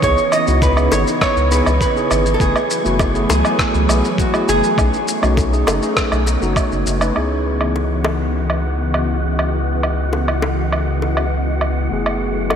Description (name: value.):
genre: sunset chillout.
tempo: 101 BPM.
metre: 4/4.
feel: straight.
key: C# minor.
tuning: A4 = 440 Hz.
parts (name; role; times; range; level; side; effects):
nylon-string guitar; melody; 0.0-6.8 s; F#4 to D#5; -20 LUFS; right 1 dB; ping-pong delay.
mellow tine electric piano; accompaniment; 0.0-12.6 s; A3 to B4; -23 LUFS; equal; auto-pan, analog delay.
soft string machine; sustained chords; 0.0-12.6 s; C#3 to D#5; -24 LUFS; equal; phaser, ensemble chorus, vintage 12-bit sampler grit.
round analog bass; bass; 0.0-12.6 s; F#1 to C#2; -19 LUFS; equal; none.
electronic kick drum; drums; 0.0-6.7 s; none; -20 LUFS; equal; none.
electronic shaker, woodblock and rim click; drums; 0.0-12.6 s; none; -23 LUFS; right 1 dB; low-pass filter on perc, low-pass filter on snare.
wind-like tuned noise texture; texture; 0.0-12.6 s; F#4 to C#6; -28 LUFS; left 1 dB; built-in reverb, wide subtle chorus.
bongos; percussion; 0.6-12.6 s; none; -28 LUFS; left 4 dB; none.
room: wet cathedral reverb, RT60 5.6 s.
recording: dreamy mix soaked in reverb.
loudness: -15 LUFS.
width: side -8 dB against mid.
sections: 0.0-7.2 A section; 7.2-12.6 B section.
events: filter sweep on string machine 7.2-12.6.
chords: 0.0 C#m9; 2.4 F#m11; 4.8 B13; 7.2 C#m9; 11.9 F#m11.